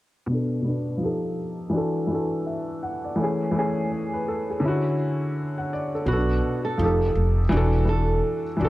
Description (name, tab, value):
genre	hip hop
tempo	83 BPM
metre	4/4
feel	swing 60% on 16ths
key	unclear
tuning	A4 = 440 Hz
part	dark upright piano	accompaniment	0.3-8.7 s	B2 to F#5	-24 LUFS	left 1 dB	low-pass filter
part	flamenco guitar	melody	6.1-8.2 s	F#4 to A4	-27 LUFS	right 3 dB	low-pass filter
part	upright bass	bass	6.1-8.7 s	E1 to B1	-22 LUFS	equal	none
room	light reverb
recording	dark, warm production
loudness	-22 LUFS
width	side -17 dB against mid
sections	0.3-6.1 A section; 6.1-8.7 B section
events	filter sweep on upright piano 0.3-6.1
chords	0.3 Bm7; 1.0 F9; 1.7 E9sus4; 3.2 Amaj7/E; 4.6 Dmaj9; 6.1 Bm7; 6.8 F9; 7.5 E9sus4